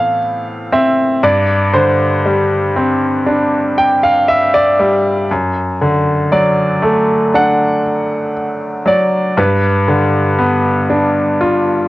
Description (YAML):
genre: pop ballad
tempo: 59 BPM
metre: 4/4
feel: straight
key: unclear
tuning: A4 = 440 Hz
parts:
  - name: clear concert grand piano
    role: melody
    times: 0.0-11.9 s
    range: B4 to F#5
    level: -16 LUFS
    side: right 1 dB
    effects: cassette tape
  - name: bright baby grand piano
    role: accompaniment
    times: 0.0-11.9 s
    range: F#2 to G5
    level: -12 LUFS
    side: equal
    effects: cassette tape
room: light reverb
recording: home recording on cassette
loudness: -11 LUFS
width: side -17 dB against mid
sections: 0.0-11.9 A section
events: grand piano fill 3.3-5.3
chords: 0.0 Amadd9; 1.2 Gsus4; 5.3 D/F#; 9.4 G7